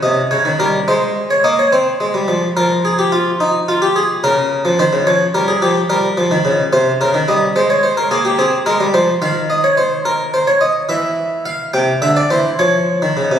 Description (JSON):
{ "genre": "classical, baroque-style two-part invention for harpsichord", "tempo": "72 BPM (dotted quarters)", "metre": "12/8", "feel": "straight", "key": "Bb minor", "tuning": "A4 = 440 Hz", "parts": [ { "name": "harpsichord", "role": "solo", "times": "0.0-13.4 s", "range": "C3 to G5", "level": "-13 LUFS", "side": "equal", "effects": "none" } ], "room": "wet recital hall reverb, RT60 1.7 s", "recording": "recorded on a phone in the room, club reverb", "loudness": "-13 LUFS", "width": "side -9 dB against mid", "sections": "0.0-13.4 A section", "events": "none", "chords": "0.0 Eb7; 0.9 Ab; 2.6 Fm; 4.2 Bbm/Db; 5.9 Eb; 7.6 Ab; 9.2 Dbmaj7sus2/Eb; 10.9 C/E; 12.6 Bbm (rootless)" }